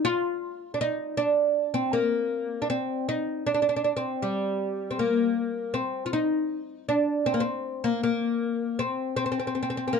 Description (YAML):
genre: arabic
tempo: 79 BPM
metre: 4/4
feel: straight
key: unclear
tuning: A4 = 440 Hz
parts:
  - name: oud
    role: solo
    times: 0.0-10.0 s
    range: G3 to F4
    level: -25 LUFS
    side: left 1 dB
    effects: none
room: light reverb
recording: dark, warm production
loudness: -25 LUFS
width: side -6 dB against mid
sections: 0.0-5.7 A section; 5.7-10.0 A section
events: none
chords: none